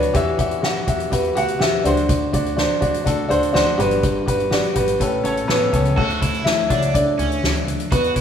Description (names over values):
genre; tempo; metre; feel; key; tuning
piano-driven pop; 124 BPM; 4/4; straight; D major; A4 = 439 Hz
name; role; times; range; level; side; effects
bright grand piano; accompaniment; 0.0-8.2 s; G2 to F#5; -19 LUFS; left 1 dB; none
upright bass; bass; 0.0-8.2 s; G1 to E2; -26 LUFS; equal; none
soft-mallet drum kit; drums; 0.0-8.2 s; crash cymbal, hi-hat, kick drum, snare drum; -22 LUFS; equal; none
cranked stack guitar; riff; 6.0-8.2 s; C#4 to F#4; -26 LUFS; right 7 dB; overdrive
room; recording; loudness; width
moderate lush hall reverb, RT60 2.2 s; rough home demo mix; -17 LUFS; side -8 dB against mid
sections
0.0-6.0 A section; 6.0-8.2 B section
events
grand piano solo 6.0-8.2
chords
0.1 Emadd9; 1.8 D7; 3.8 Gmaj7; 5.0 Aadd9; 6.0 Dmaj7